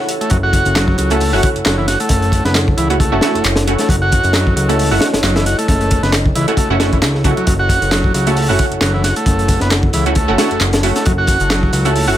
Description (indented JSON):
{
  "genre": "breakbeat, breaks",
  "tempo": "134 BPM",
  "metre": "4/4",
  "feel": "swing 56% on 16ths",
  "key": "F# dorian",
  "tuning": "A4 = 439 Hz",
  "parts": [
    { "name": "dark analog pad", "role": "sustained chords", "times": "0.0-12.2 s", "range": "E4 to A5", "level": "-24 LUFS", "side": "equal", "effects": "chorus, vintage 12-bit sampler grit, sidechain pumping" },
    { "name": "crunchy breakbeat drum kit", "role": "drums", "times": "0.1-12.1 s", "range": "hi-hat, kick drum, snare drum", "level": "-17 LUFS", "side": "equal", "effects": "none" },
    { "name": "punchy analog drum machine", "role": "drums", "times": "0.1-12.1 s", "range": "handclaps, hi-hat", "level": "-22 LUFS", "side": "right 1 dB", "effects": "none" },
    { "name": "overdriven combo organ", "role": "riff", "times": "0.2-12.2 s", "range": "E3 to F#4", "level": "-18 LUFS", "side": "equal", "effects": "tape echo" },
    { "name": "fat analog bass", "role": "bass", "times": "0.3-12.2 s", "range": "F#1 to C#2", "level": "-17 LUFS", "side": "equal", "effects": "none" },
    { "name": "orchestra-hit-like synth stab", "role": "stabs", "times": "1.1-12.2 s", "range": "A3 to F#4", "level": "-20 LUFS", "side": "right 2 dB", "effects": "built-in reverb, tape echo" }
  ],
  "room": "studio reverb",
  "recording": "none",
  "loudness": "-12 LUFS",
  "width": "side -12 dB against mid",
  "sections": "0.0-12.2 A section",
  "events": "break 0.0-0.3",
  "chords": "0.0 F#m7"
}